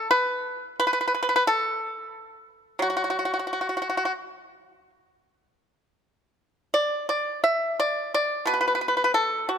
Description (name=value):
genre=chinese traditional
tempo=86 BPM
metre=4/4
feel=uneven beats, rubato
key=unclear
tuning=A4 = 443 Hz
part: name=pipa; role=solo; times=0.0-9.6 s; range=B2 to E5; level=-23 LUFS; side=equal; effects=none
room=light reverb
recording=close, detailed microphones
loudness=-23 LUFS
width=side -8 dB against mid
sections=0.0-9.6 A section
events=none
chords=none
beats=| 0.10 0.78 1.47 2.14 | 2.81 3.49 4.19 4.91 | 5.62 6.35 7.08 7.78 | 8.48 9.15